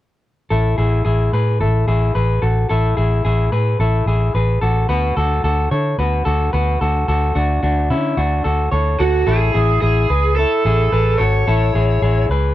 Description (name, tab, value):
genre	indie pop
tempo	109 BPM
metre	4/4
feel	straight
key	A major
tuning	A4 = 440 Hz
part	electric guitar through a small old amp	arpeggios	0.5-12.5 s	C#4 to C#5	-19 LUFS	left 2 dB	none
part	vintage muted fingered electric bass	bass	0.5-12.5 s	G#1 to D3	-17 LUFS	equal	none
part	lead guitar through a small cranked amp	melody	9.0-12.2 s	F#4 to C#5	-19 LUFS	right 3 dB	overdrive
room	little or no reverb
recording	dry, close 1970s-style studio recording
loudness	-14 LUFS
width	side -14 dB against mid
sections	0.5-9.3 A section; 9.3-12.5 B section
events	none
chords	0.5 A5; 4.9 Dmaj7; 9.3 Amaj7